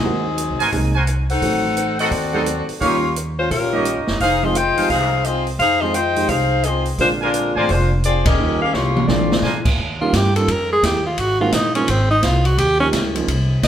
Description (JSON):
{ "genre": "jazz, big band swing", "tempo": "172 BPM", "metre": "4/4", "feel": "swing 64% on 8ths", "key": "Eb mixolydian", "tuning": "A4 = 441 Hz", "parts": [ { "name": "warm saxophone section", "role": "melody", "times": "0.0-9.6 s", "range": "Gb3 to G5", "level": "-19 LUFS", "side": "left 2 dB", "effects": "none" }, { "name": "warm concert grand piano", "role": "accompaniment", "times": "0.0-13.3 s", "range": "D3 to A4", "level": "-25 LUFS", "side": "right 4 dB", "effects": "none" }, { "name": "upright bass", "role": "bass", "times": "0.0-13.7 s", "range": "F1 to Bb2", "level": "-22 LUFS", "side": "equal", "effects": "none" }, { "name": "open jazz drum kit", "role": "drums", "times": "0.4-13.7 s", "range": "crash cymbal, hi-hat, kick drum, ride cymbal, snare drum, toms", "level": "-23 LUFS", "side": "equal", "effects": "none" }, { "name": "clear trumpet section", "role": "stabs", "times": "0.6-9.6 s", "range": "D4 to Ab5", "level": "-24 LUFS", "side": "right 3 dB", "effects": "none" }, { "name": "edgy alto saxophone", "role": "melody", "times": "10.0-13.7 s", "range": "C4 to Eb5", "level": "-18 LUFS", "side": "right 1 dB", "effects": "none" } ], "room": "wet large studio reverb, RT60 1.4 s", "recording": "band playing live in one room", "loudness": "-16 LUFS", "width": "side -10 dB against mid", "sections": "0.0-9.8 A section; 9.8-13.7 B section", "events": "band accent 8.2; drum fill 8.7-9.4; alto saxophone solo 9.8-13.7", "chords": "0.0 Ab9; 1.4 Adim7; 2.8 Eb9; 4.2 Fm7; 7.0 Bb9; 8.4 Eb9; 9.1 Bb9; 9.8 Eb9; 11.2 Ab9; 12.6 Eb7sus2" }